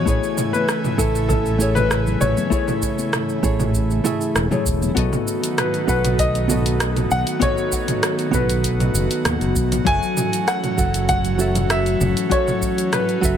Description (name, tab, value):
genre	sunset chillout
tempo	98 BPM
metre	4/4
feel	straight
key	unclear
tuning	A4 = 439 Hz
part	clear concert grand piano	melody	0.0-13.4 s	A4 to G#5	-24 LUFS	left 2 dB	digital delay
part	hollow-body jazz guitar	accompaniment	0.0-13.4 s	F#3 to G#5	-24 LUFS	moving between left 8 dB and right 7 dB	auto-pan, digital delay
part	airy breathy pad	sustained chords	0.0-13.4 s	C#3 to G#5	-26 LUFS	right 1 dB	chorus
part	fretless electric bass	bass	0.1-13.4 s	E1 to D#2	-22 LUFS	equal	ensemble chorus
part	deep house drum kit	drums	0.1-13.4 s	cabasa, hi-hat, rim click, toms	-24 LUFS	right 1 dB	none
part	electronic kick drum	drums	0.1-13.4 s	none	-25 LUFS	equal	none
part	congas	percussion	0.5-4.9 s	none	-31 LUFS	left 3 dB	none
room	light reverb, digital ambience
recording	none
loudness	-17 LUFS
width	side -9 dB against mid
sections	0.0-5.0 A section; 5.0-13.4 B section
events	none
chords	0.1 Amaj7; 5.0 B7; 9.9 F#m7